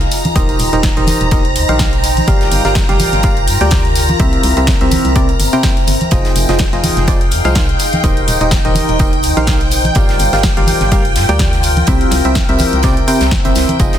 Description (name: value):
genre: piano house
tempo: 125 BPM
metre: 4/4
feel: swing 55% on 16ths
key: unclear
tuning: A4 = 440 Hz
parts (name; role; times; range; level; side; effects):
- string machine, violins; sustained chords; 0.0-14.0 s; G5 to Bb5; -22 LUFS; equal; ensemble chorus, sidechain pumping
- organ-like FM bass; bass; 0.0-14.0 s; Eb1 to G2; -17 LUFS; equal; sidechain pumping
- house drum kit; drums; 0.0-14.0 s; hi-hat, snare drum; -21 LUFS; left 2 dB; none
- tambourine and congas; percussion; 0.0-14.0 s; none; -23 LUFS; right 1 dB; none
- deep dark ambient pad; texture; 0.0-14.0 s; C4 to G5; -21 LUFS; left 1 dB; chorus, built-in reverb, sidechain pumping
- crisp fusion drum kit; drums; 0.1-14.0 s; hi-hat, snare drum; -27 LUFS; right 4 dB; sidechain pumping on hats, high-pass filter on hats, high-pass filter on snare, high-pass filter on room
- barking FM electric piano; riff; 0.4-14.0 s; C3 to G5; -17 LUFS; right 1 dB; chorus, sidechain pumping, tape echo
- electronic kick drum; drums; 0.4-13.9 s; none; -15 LUFS; equal; overdrive
room: light reverb, studio ambience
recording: dense, heavily limited modern master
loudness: -10 LUFS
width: side -10 dB against mid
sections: 0.0-14.0 A section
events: none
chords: 0.1 Eb6; 2.3 Gm7; 4.2 C7; 6.1 Fm7; 7.8 Eb6; 10.0 Gm7; 11.9 C7